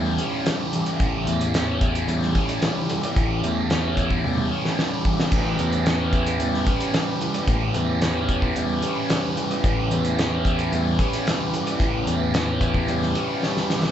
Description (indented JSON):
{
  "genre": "psychedelic rock",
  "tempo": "111 BPM",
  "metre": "4/4",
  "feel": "straight",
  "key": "A mixolydian",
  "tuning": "A4 = 441 Hz",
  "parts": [
    { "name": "pedal harmonium", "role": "sustained chords", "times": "0.0-13.9 s", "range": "C#4 to B4", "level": "-29 LUFS", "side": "right 3 dB", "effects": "none" },
    { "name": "thick fuzz guitar", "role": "riff", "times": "0.0-13.9 s", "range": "A2 to E4", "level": "-24 LUFS", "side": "left 1 dB", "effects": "distortion, phaser" },
    { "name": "picked electric bass", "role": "bass", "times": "0.0-13.1 s", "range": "A1 to E2", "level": "-27 LUFS", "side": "equal", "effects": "none" },
    { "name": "cloth-damped thuddy drum kit", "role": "drums", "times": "0.2-13.9 s", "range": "crash cymbal, hi-hat, kick drum, snare drum, toms", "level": "-25 LUFS", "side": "equal", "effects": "none" }
  ],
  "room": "moderate large studio reverb, RT60 1.2 s",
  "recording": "band playing live in one room, nothing above 7.9 kHz",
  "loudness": "-20 LUFS",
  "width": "side -10 dB against mid",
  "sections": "0.0-13.9 A section",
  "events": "drum fill 4.2-5.3, 13.4-13.9",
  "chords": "0.0 A7",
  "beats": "0.46 | 1.00 1.54 2.08 2.62 | 3.16 3.70 4.24 4.78 | 5.32 5.86 6.40 6.94 | 7.48 8.02 8.55 9.10 | 9.63 10.17 10.71 11.25 | 11.79 12.34 12.88 13.42"
}